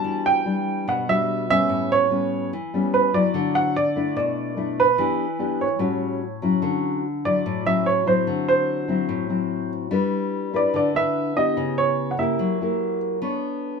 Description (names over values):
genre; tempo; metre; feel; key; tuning
bossa nova; 146 BPM; 4/4; straight; D major; A4 = 439 Hz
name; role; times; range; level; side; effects
warm baby grand piano; melody; 0.0-13.0 s; B4 to A5; -22 LUFS; right 4 dB; none
nylon-string guitar; accompaniment; 0.0-13.8 s; A2 to C#5; -23 LUFS; left 4 dB; none
room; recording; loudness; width
moderate small room reverb, RT60 0.5 s; minimal, uncompressed stereo recording; -20 LUFS; side -5 dB against mid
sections
0.0-6.6 A section; 6.6-13.8 B section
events
none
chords
0.1 Em9; 1.7 A9; 3.3 Dadd9; 4.2 Bm7; 5.0 Em7; 5.8 A6; 6.6 Dmaj9; 8.3 D9; 9.9 G6; 11.6 C#m7b5; 12.4 F#7b9; 13.2 Bm9